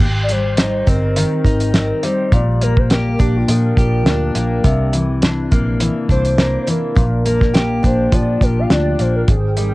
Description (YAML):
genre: indie pop, bedroom pop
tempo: 103 BPM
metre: 4/4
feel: swing 55% on 16ths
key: Bb major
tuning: A4 = 440 Hz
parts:
  - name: fingerpicked steel-string acoustic guitar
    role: accompaniment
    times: 0.0-9.7 s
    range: Bb2 to G4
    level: -19 LUFS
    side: left 2 dB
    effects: lush chorus, warbly pitch drift
  - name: vintage muted fingered electric bass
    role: bass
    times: 0.0-9.7 s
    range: G1 to Bb2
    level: -18 LUFS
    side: equal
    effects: none
  - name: cloth-damped thuddy drum kit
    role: drums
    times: 0.0-9.7 s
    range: hi-hat, kick drum, snare drum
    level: -16 LUFS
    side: equal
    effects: cassette tape
  - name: warbly nostalgic lead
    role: melody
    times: 0.2-9.7 s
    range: F4 to F5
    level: -22 LUFS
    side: equal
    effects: tremolo, wide subtle chorus, cassette tape, tape echo
  - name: hollow soft pad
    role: sustained chords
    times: 9.3-9.7 s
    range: C4 to G5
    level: -28 LUFS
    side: right 2 dB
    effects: ensemble chorus
room: light reverb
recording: home recording on cassette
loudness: -13 LUFS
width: side -20 dB against mid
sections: 0.0-9.7 A section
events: soft synth lead solo 0.0-9.7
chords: 0.0 Abmaj7; 2.3 Bb6; 4.6 C9; 7.0 Bb6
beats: | 0.00 0.58 1.16 1.74 | 2.32 2.90 3.48 4.06 | 4.64 5.22 5.80 6.38 | 6.96 7.54 8.12 8.71 | 9.29